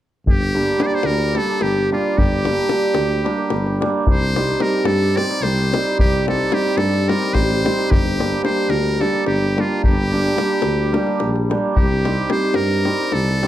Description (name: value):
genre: balkan folk, Balkan wedding band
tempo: 218 BPM (eighths)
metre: 7/8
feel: straight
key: G minor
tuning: A4 = 440 Hz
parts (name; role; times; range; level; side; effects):
- trumpet with metal mute; melody; 0.3-13.5 s; F4 to D5; -23 LUFS; equal; none
- mellow tuba; bass; 0.3-13.5 s; G1 to G2; -22 LUFS; equal; none
- davul; percussion; 0.3-13.5 s; none; -22 LUFS; left 1 dB; none
- hammered dulcimer; accompaniment; 0.5-13.5 s; G3 to G4; -20 LUFS; right 1 dB; none
room: light reverb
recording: dark, warm production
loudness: -16 LUFS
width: side -12 dB against mid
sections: 0.3-13.5 A section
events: none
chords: 0.3 Gm; 4.1 Cm; 7.9 Gm; 11.8 Cm